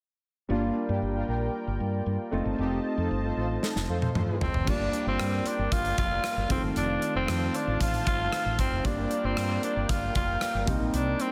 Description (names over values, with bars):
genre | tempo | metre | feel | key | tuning
1980s-style pop | 115 BPM | 4/4 | straight | G minor | A4 = 439 Hz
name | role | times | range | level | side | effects
warm concert grand piano | accompaniment | 0.5-11.3 s | Eb3 to F4 | -35 LUFS | equal | slapback echo
warm analog pad | sustained chords | 0.5-11.3 s | Eb4 to A5 | -39 LUFS | equal | chorus
analog synth brass | stabs | 0.5-4.4 s | Bb3 to C5 | -36 LUFS | equal | chorus, slapback echo
woody fretless electric bass | bass | 0.5-11.1 s | F1 to G2 | -33 LUFS | equal | none
gated 80s drum kit | drums | 3.6-11.3 s | crash cymbal, hi-hat, kick drum, rim click, snare drum, toms | -33 LUFS | equal | none
raspy tenor saxophone | melody | 4.4-11.3 s | C4 to F4 | -32 LUFS | equal | tape echo
room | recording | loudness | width
wet recital hall reverb, RT60 1.4 s, small room ambience | big arena sound | -28 LUFS | mono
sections
0.5-4.7 A section; 4.7-11.3 B section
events
drum fill 3.6-4.7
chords
0.5 Gm7; 2.3 F7; 4.7 Gm7; 6.5 F7; 8.8 Gm7; 10.7 Cm7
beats
| 0.50 1.02 1.54 2.07 | 2.59 3.11 3.63 4.15 | 4.67 5.20 5.72 6.24 | 6.76 7.28 7.80 8.33 | 8.85 9.37 9.89 10.41 | 10.94